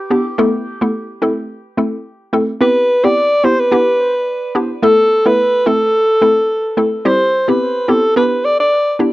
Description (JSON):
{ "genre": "afrobeats", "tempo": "108 BPM", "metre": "4/4", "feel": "swing 55% on 16ths", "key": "C major", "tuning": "A4 = 440 Hz", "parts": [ { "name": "warm alto saxophone", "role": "melody", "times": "0.0-9.0 s", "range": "G4 to D5", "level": "-13 LUFS", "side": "equal", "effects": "cassette tape, analog delay" }, { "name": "hollow square pluck", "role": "accompaniment", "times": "0.0-9.1 s", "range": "G3 to A4", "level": "-15 LUFS", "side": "equal", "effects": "chorus, cassette tape" } ], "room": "moderate studio reverb, RT60 0.7 s", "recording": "home recording on cassette", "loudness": "-12 LUFS", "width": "side -17 dB against mid", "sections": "0.0-9.1 A section", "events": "none", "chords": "0.4 Esus4; 1.2 Am; 2.6 Cmaj7; 3.7 G6; 4.8 Esus4; 5.7 Am; 7.1 Cmaj7; 8.2 G6", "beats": "| 0.39 0.94 1.50 2.05 | 2.61 3.16 3.72 4.28 | 4.83 5.39 5.94 6.50 | 7.05 7.61 8.16 8.72" }